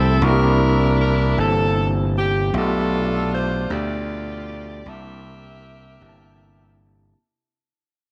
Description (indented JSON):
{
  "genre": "slow gospel",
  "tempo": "52 BPM (dotted quarters)",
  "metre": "6/8",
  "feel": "straight",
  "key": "unclear",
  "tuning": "A4 = 439 Hz",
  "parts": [
    { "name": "clear saxophone section", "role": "melody", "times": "0.0-6.8 s", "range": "C4 to E5", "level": "-26 LUFS", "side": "equal", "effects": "none" },
    { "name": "mellow tine electric piano", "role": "accompaniment", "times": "0.0-7.2 s", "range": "B2 to A5", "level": "-27 LUFS", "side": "equal", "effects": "none" },
    { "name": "gritty slap bass", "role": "bass", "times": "0.0-7.1 s", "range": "G1 to D2", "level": "-23 LUFS", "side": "equal", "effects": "overdrive" }
  ],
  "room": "moderate echo chamber reverb, RT60 1.5 s, small room ambience",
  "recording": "none",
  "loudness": "-19 LUFS",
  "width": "mono",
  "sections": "0.0-7.2 A section",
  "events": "fade-out 0.0-7.2",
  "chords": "0.2 C9; 2.5 G13/B; 4.8 C13"
}